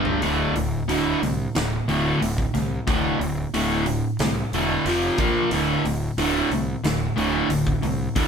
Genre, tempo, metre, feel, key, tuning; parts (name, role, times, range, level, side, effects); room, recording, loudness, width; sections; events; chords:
hard rock; 91 BPM; 4/4; straight; D minor; A4 = 440 Hz
overdriven semi-hollow guitar; riff; 0.0-8.3 s; D2 to Bb3; -22 LUFS; equal
fuzz fingered electric bass; bass; 0.0-8.3 s; D1 to C2; -28 LUFS; equal; overdrive
big rock drum kit; drums; 0.1-8.3 s; hi-hat, kick drum, snare drum, toms; -29 LUFS; equal
light reverb; band playing live in one room; -20 LUFS; side -6 dB against mid
0.0-8.3 A section
drum fill 0.0
0.2 D5; 4.9 F5; 5.2 Bb5; 5.5 D5